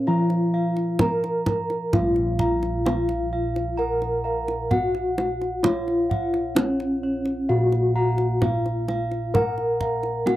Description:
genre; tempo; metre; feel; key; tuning
Javanese gamelan; 65 BPM; 4/4; straight; Bb pelog; A4 = 440 Hz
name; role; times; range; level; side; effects
gamelan-type bronze metallophone; melody; 0.0-10.4 s; Db4-30c to Bb4; -25 LUFS; left 1 dB; none
gamelan-type bronze metallophone; arpeggios; 0.0-10.4 s; Db5-30c to Bb5; -32 LUFS; right 6 dB; none
gamelan-type bossed gongs; bass; 0.0-10.4 s; Bb1 to Bb4; -25 LUFS; equal; none
gamelan-type bossed gongs; arpeggios; 0.1-10.4 s; Db5-30c to Bb5; -33 LUFS; left 4 dB; slapback echo
kendang; percussion; 0.3-10.4 s; none; -25 LUFS; right 1 dB; none
room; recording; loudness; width
little or no reverb; dry, close 1970s-style studio recording; -21 LUFS; side -14 dB against mid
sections
0.0-10.4 A section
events
none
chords
none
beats
0.08 1.01 | 1.94 2.86 3.79 4.71 | 5.64 6.57 7.49 8.42 | 9.35 10.26

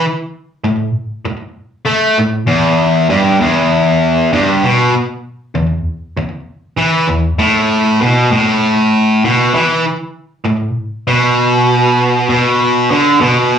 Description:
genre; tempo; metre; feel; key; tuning
rock; 98 BPM; 4/4; straight; unclear; A4 = 436 Hz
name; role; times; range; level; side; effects
distorted electric guitar; solo; 0.0-13.6 s; E2 to A3; -11 LUFS; equal; overdrive, slapback echo
room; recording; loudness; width
wet club reverb, RT60 0.5 s; live gig heard through the venue's PA, club reverb; -11 LUFS; side -8 dB against mid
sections
0.0-13.6 A section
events
none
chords
none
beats
| 0.07 0.68 1.29 1.90 | 2.51 3.12 3.73 4.34 | 4.95 5.56 6.17 6.79 | 7.40 8.01 8.62 9.23 | 9.85 10.46 11.07 11.68 | 12.29 12.90 13.52

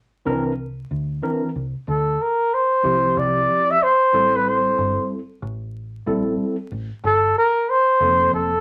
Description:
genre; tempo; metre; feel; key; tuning
hip hop, jazz-hop; 93 BPM; 4/4; swing 62% on 16ths; D minor; A4 = 439 Hz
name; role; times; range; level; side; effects
tine electric piano; accompaniment; 0.3-8.5 s; E3 to Bb4; -26 LUFS; equal; overdrive
deep dub fingered electric bass; bass; 0.3-8.6 s; F1 to D2; -30 LUFS; equal; none
breathy flugelhorn; melody; 1.9-8.6 s; A4 to E5; -19 LUFS; equal; none
room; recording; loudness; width
moderate studio reverb, RT60 0.5 s; vinyl crackle; -20 LUFS; mono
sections
0.0-8.6 A section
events
none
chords
0.0 C9; 1.9 Dm11; 4.1 Am7; 7.0 Gm11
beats
0.58 1.23 | 1.87 2.52 3.16 3.81 | 4.45 5.10 5.75 6.39 | 7.04 7.68 8.32

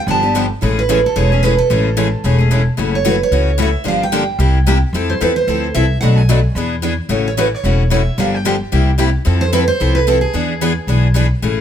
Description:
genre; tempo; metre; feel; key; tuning
acoustic string swing (jazz manouche); 222 BPM; 4/4; swing 56% on 8ths; unclear; A4 = 441 Hz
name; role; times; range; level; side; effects
picked steel-string acoustic guitar; melody; 0.0-11.1 s; G#4 to A5; -18 LUFS; right 4 dB; none
picked steel-string acoustic guitar; accompaniment; 0.1-11.6 s; B2 to A4; -19 LUFS; left 6 dB; none
picked steel-string acoustic guitar; accompaniment; 0.1-11.3 s; B2 to B4; -23 LUFS; right 5 dB; none
upright bass; bass; 0.1-11.6 s; E1 to F2; -16 LUFS; equal; none
room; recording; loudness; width
light reverb; none; -12 LUFS; side -9 dB against mid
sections
0.0-2.8 A section; 2.8-11.4 B section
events
none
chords
0.1 G9; 0.6 Amaj7; 2.8 F#m7; 3.9 Gm7; 4.4 C7; 4.9 Fmaj7; 6.0 Bm7; 6.6 E7; 7.1 A6; 8.2 Gm7; 8.7 C7; 9.3 Fmaj7; 10.3 E7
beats
0.08 0.35 | 0.62 0.89 1.16 1.43 | 1.70 1.97 2.24 2.51 | 2.78 3.05 3.32 3.59 | 3.86 4.13 4.40 4.67 | 4.94 5.21 5.48 5.75 | 6.02 6.29 6.56 6.83 | 7.10 7.37 7.64 7.91 | 8.18 8.45 8.72 8.99 | 9.26 9.53 9.80 10.07 | 10.34 10.61 10.88 11.16 | 11.43

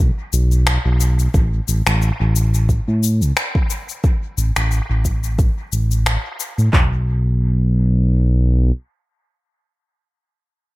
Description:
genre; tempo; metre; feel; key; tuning
organic downtempo; 89 BPM; 4/4; swing 56% on 16ths; unclear; A4 = 440 Hz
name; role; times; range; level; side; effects
smooth synth bass; bass; 0.0-8.7 s; A1 to A2; -15 LUFS; equal; sidechain pumping
electronic cabasa and finger snaps; drums; 0.3-6.7 s; none; -23 LUFS; left 2 dB; studio reverb, dub echo
afro-pop drum kit; drums; 1.3-6.9 s; handclaps, kick drum, toms; -16 LUFS; equal; studio reverb
room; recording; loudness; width
digital ambience; echo-heavy mix; -15 LUFS; side -19 dB against mid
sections
0.0-6.7 A section; 6.7-9.4 B section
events
filter sweep on analog synth bass 0.0-6.7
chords
none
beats
0.67 | 1.34 2.01 2.69 3.36 | 4.04 4.71 5.38 6.06 | 6.73 7.41 8.08

